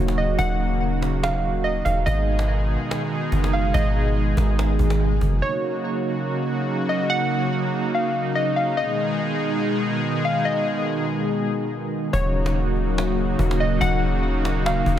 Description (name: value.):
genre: hip hop, atmospheric cloud-rap.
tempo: 143 BPM.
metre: 4/4.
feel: half-time.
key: unclear.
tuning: A4 = 437 Hz.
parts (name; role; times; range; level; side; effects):
warm analog pad; sustained chords; 0.0-15.0 s; B2 to G#4; -23 LUFS; equal; chorus, tremolo.
soft 808-style bass; bass; 0.0-5.4, 12.1-15.0 s; D#1 to G#1; -22 LUFS; equal; none.
cajon; drums; 0.1-5.3, 12.1-15.0 s; none; -31 LUFS; equal; none.
warbly dusty pluck; melody; 0.2-15.0 s; C#5 to F#5; -26 LUFS; equal; chorus, tape echo.
swell; sound effects; 4.5-5.4 s; none; -32 LUFS; right 3 dB; none.
room: digital ambience.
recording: none.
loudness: -20 LUFS.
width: side -11 dB against mid.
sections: 0.0-5.4 A section; 5.4-15.0 B section.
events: swell 4.5-5.4.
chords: 0.0 D#m7; 2.1 G#m; 5.4 D#m7; 8.8 G#m; 12.1 D#m7.